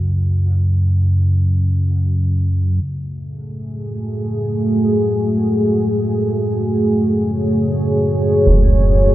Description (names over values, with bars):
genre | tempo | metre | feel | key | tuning
dark ambient drone | free time | none | none | F# minor | A4 = 440 Hz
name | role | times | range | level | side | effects
gamelan-type bossed gongs | arpeggios | 0.0-1.9 s | F#4 | -42 LUFS | equal | diffuse ambient delay
deep rumbling drone | drone | 0.0-9.1 s | F#2 to C#3 | -18 LUFS | equal | built-in reverb
deep dark ambient pad | sustained chords | 3.5-9.1 s | A3 to C#5 | -16 LUFS | equal | chorus, built-in reverb
concert bass drum | percussion | 8.5-8.6 s | none | -13 LUFS | equal | low-pass filter on kick
room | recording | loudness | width
moderate huge ambient reverb, RT60 7.2 s | worn, warbling old tape, cassette tape, warbly pitch drift | -14 LUFS | side -14 dB against mid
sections
0.0-2.8 A section; 2.8-9.1 B section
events
fade-in on synth drone 2.8-9.1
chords
0.0 F#5; 2.8 F#madd9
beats
free time